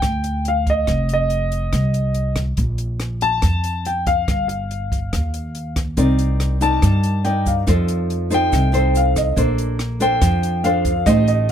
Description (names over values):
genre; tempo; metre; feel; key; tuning
bossa nova; 141 BPM; 4/4; straight; unclear; A4 = 440 Hz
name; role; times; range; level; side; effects
warm baby grand piano; melody; 0.0-11.5 s; Eb5 to A5; -21 LUFS; left 1 dB; none
upright bass; bass; 0.0-11.5 s; F1 to G2; -20 LUFS; equal; none
compact cocktail drum kit; drums; 0.0-11.5 s; hi-hat, kick drum, rim click; -24 LUFS; equal; none
nylon-string guitar; accompaniment; 6.0-11.5 s; C3 to D5; -20 LUFS; equal; none
egg shaker; percussion; 6.0-11.5 s; none; -36 LUFS; right 10 dB; none
room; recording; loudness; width
little or no reverb; close, detailed microphones; -16 LUFS; side -9 dB against mid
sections
0.0-11.5 A section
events
none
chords
0.0 G7(no3); 0.9 F5; 2.6 Bb5; 4.3 Ebadd9/G; 6.0 Cm9; 7.7 F7; 9.4 Bbmaj9